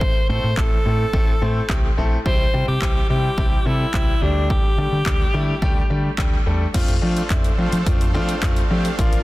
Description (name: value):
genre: dance-pop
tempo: 107 BPM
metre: 4/4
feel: straight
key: unclear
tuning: A4 = 440 Hz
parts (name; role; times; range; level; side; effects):
- edgy alto saxophone; melody; 0.0-6.1 s; D4 to C5; -25 LUFS; left 1 dB; tape echo
- clear baby grand piano; accompaniment; 0.0-9.2 s; F3 to C5; -26 LUFS; left 2 dB; sidechain pumping
- deep dub fingered electric bass; bass; 0.0-9.2 s; A1 to F3; -22 LUFS; equal; sidechain pumping
- house drum kit; drums; 0.0-9.2 s; crash cymbal, handclaps, hi-hat, kick drum; -20 LUFS; equal; none
- supersaw chords; sustained chords; 6.7-9.2 s; D4 to F5; -30 LUFS; right 2 dB; sidechain pumping
room: digital ambience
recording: dense, heavily limited modern master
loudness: -17 LUFS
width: side -18 dB against mid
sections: 0.0-6.7 A section; 6.7-9.2 B section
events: none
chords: 0.0 Am; 2.3 C; 4.2 Dsus4; 6.7 F6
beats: | 0.01 0.58 1.14 1.70 | 2.26 2.82 3.38 3.94 | 4.50 5.06 5.62 6.18 | 6.74 7.30 7.87 8.43 | 8.99